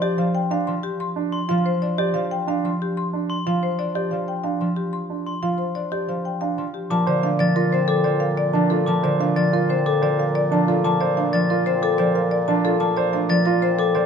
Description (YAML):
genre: classical, minimalist pattern music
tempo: 183 BPM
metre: 6/4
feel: straight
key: Bb major from 6.9 s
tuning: A4 = 440 Hz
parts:
  - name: marimba with medium hard mallets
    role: melody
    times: 0.0-14.1 s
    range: G4 to C6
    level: -24 LUFS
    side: left 6 dB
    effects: none
  - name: concert harp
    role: accompaniment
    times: 0.0-14.1 s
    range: D3 to D4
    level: -23 LUFS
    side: equal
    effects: none
  - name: warm grand piano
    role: arpeggios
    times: 0.0-14.1 s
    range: D4 to D5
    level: -26 LUFS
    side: right 11 dB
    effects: none
  - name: glockenspiel with hard plastic mallets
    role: arpeggios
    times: 1.3-14.0 s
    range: C6 to A6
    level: -31 LUFS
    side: equal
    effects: none
  - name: mellow bassoon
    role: bass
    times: 6.9-14.1 s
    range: Bb2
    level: -27 LUFS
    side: right 2 dB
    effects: none
room: moderate recital hall reverb, RT60 1.5 s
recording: close, detailed microphones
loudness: -19 LUFS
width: side -7 dB against mid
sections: 0.0-6.9 A section; 6.9-14.1 B section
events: none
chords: 0.0 Fsus2; 6.9 Bbmaj7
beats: 0.02 0.35 0.67 | 1.00 1.33 1.66 1.99 2.31 2.64 | 2.97 3.30 3.62 3.95 4.28 4.61 | 4.94 5.26 5.59 5.92 6.25 6.58 | 6.90 7.23 7.56 7.89 8.21 8.54 | 8.87 9.20 9.53 9.86 10.18 10.51 | 10.84 11.17 11.49 11.82 12.15 12.48 | 12.81 13.13 13.46 13.79